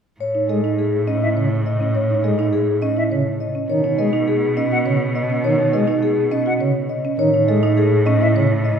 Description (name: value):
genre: classical, minimalist pattern music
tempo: 103 BPM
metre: 3/4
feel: straight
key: A lydian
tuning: A4 = 440 Hz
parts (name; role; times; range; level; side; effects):
- vibraphone with soft mallets; melody; 0.2-8.8 s; G#4 to D#5; -21 LUFS; left 4 dB; none
- rich cello; bass; 0.2-8.8 s; A2 to B2; -22 LUFS; right 1 dB; none
- marimba with medium mallets; arpeggios; 0.3-8.5 s; C#4 to C#5; -22 LUFS; right 8 dB; none
- pipe organ, flutes; accompaniment; 0.5-8.5 s; C#3 to G#3; -24 LUFS; left 1 dB; none
- silver concert flute; arpeggios; 1.2-8.3 s; E5 to F#5; -27 LUFS; left 2 dB; none
room: wet recital hall reverb, RT60 1.3 s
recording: heard from further back in the room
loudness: -16 LUFS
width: side -7 dB against mid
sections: 0.2-8.8 A section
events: none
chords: 0.2 Amaj7; 3.7 Badd9; 7.2 Amaj7